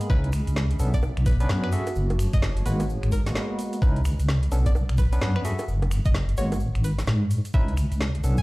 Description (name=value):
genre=UK garage, two-step garage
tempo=129 BPM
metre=4/4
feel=swing 62% on 16ths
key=C# minor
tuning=A4 = 438 Hz
part: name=barky tine electric piano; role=stabs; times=0.0-8.4 s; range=G#3 to E5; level=-32 LUFS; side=equal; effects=fast tremolo, tape echo
part: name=garage drum kit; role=drums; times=0.0-8.4 s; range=bongos, finger snaps, hi-hat, snare drum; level=-33 LUFS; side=equal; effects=overdrive
part: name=egg shaker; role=percussion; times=0.0-8.4 s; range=none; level=-47 LUFS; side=right 2 dB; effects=none
part: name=warbly tape-like pad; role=texture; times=0.0-3.8 s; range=B3 to D6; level=-37 LUFS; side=right 2 dB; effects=chorus, built-in reverb, sidechain pumping
part: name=string-like resonator pluck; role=melody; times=0.1-8.4 s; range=A#4 to G#5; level=-38 LUFS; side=left 1 dB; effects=chorus, phaser, tape echo
part: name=deep soft wobble bass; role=bass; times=0.1-8.4 s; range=F#1 to G#2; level=-23 LUFS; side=equal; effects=chorus
part: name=electronic kick drum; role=drums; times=0.1-8.4 s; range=none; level=-22 LUFS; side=equal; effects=overdrive
room=little or no reverb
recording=played on a big sound system in a bare room, large studio reverb, vinyl crackle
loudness=-21 LUFS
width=side -21 dB against mid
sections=0.0-3.8 A section; 3.8-8.4 A section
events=drop 0.0-3.8, 3.8-8.4; break 3.4-3.8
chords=0.1 C#m9; 0.8 Bm9; 1.7 F#m9; 2.7 G#m9; 3.8 C#m9; 4.5 Bm9; 5.4 F#m9; 6.4 G#m9; 7.5 C#m9